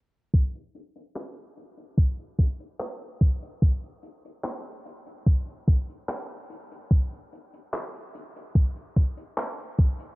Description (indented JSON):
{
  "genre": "vaporwave",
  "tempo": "73 BPM",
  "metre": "4/4",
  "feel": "straight",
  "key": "none",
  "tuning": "none",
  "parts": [
    { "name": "electronic kick drum", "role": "drums", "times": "0.3-10.0 s", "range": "none", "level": "-20 LUFS", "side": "equal", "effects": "overdrive" },
    { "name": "unplugged drum kit", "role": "drums", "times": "0.3-10.2 s", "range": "handclaps, hi-hat", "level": "-37 LUFS", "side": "equal", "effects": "low-pass filter on hats, low-pass filter on snare, low-pass filter on room" }
  ],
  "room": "little or no reverb",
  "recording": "dark, warm production, cassette tape, low-pass filter",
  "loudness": "-24 LUFS",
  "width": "side -23 dB against mid",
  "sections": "0.3-10.2 A section",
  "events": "filter sweep on drum 0.3-10.2; filter sweep 0.3-10.2",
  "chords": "none",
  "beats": "| 0.34 1.16 1.98 2.80 | 3.62 4.45 5.27 6.09 | 6.91 7.73 8.55 9.38"
}